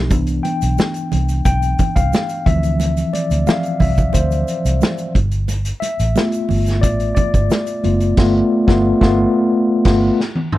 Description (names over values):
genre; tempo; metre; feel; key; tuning
lush 1970s-style soul; 89 BPM; 4/4; straight; unclear; A4 = 440 Hz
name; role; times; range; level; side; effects
mellow tine electric piano; accompaniment; 0.0-10.2 s; E3 to G5; -17 LUFS; left 1 dB; medium stereo tremolo
vintage muted fingered electric bass; bass; 0.0-10.1 s; F#1 to D2; -18 LUFS; equal; none
vintage drum kit; drums; 0.1-10.6 s; crash cymbal, hi-hat, kick drum, snare drum, toms; -18 LUFS; equal; none
congas; percussion; 0.1-8.0 s; none; -27 LUFS; right 9 dB; none
egg shaker; percussion; 0.1-8.2 s; none; -41 LUFS; right 19 dB; none
room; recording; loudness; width
small room ambience; none; -14 LUFS; side -15 dB against mid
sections
0.0-10.6 A section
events
tine electric piano solo 0.0-10.6; band accent 8.2-10.6; drum fill 10.2-10.6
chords
0.1 Cmaj7; 2.5 Dm9; 5.2 G9